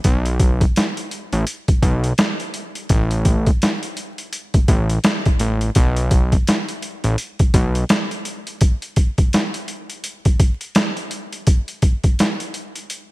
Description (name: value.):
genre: hip hop, boom-bap hip-hop.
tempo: 84 BPM.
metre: 4/4.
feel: swing 60% on 16ths.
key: unclear.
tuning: A4 = 442 Hz.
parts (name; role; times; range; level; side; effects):
fat analog bass; bass; 0.0-7.8 s; A1 to B1; -18 LUFS; equal; none.
boom bap sampler-style drum kit; drums; 0.0-13.1 s; hi-hat, kick drum, snare drum; -17 LUFS; equal; overdrive.
room: little or no reverb.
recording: bright 1980s-style digital production, vinyl crackle.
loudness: -16 LUFS.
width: side -19 dB against mid.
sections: 0.0-13.1 A section.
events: none.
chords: none.